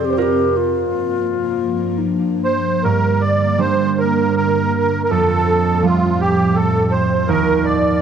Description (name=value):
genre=celtic folk, Celtic slow air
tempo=80 BPM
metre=3/4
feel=uneven beats, rubato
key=G minor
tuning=A4 = 444 Hz
part: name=mellow hollow wooden flute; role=second line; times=0.0-2.8 s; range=D4 to A4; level=-20 LUFS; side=left 10 dB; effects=cassette tape
part: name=concert harp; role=accompaniment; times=0.0-8.0 s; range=Eb2 to D5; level=-18 LUFS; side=right 5 dB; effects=cassette tape
part: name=ethereal airy pad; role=sustained chords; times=0.0-8.0 s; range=F2 to C4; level=-22 LUFS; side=left 2 dB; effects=ensemble chorus, built-in reverb, cassette tape
part: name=musette accordion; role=melody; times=2.4-8.0 s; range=F4 to D5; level=-17 LUFS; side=right 2 dB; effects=cassette tape, analog delay
room=light reverb, small room ambience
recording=home recording on cassette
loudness=-14 LUFS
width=side -8 dB against mid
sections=0.0-2.8 A section; 2.8-8.0 B section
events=harp solo 0.0-2.8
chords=0.0 F; 0.6 Gm7; 2.8 Gm; 5.1 Fadd9; 7.3 Ebadd9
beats=| 0.56 1.30 2.06 | 2.83 3.59 4.36 | 5.10 5.83 6.55 | 7.28 8.01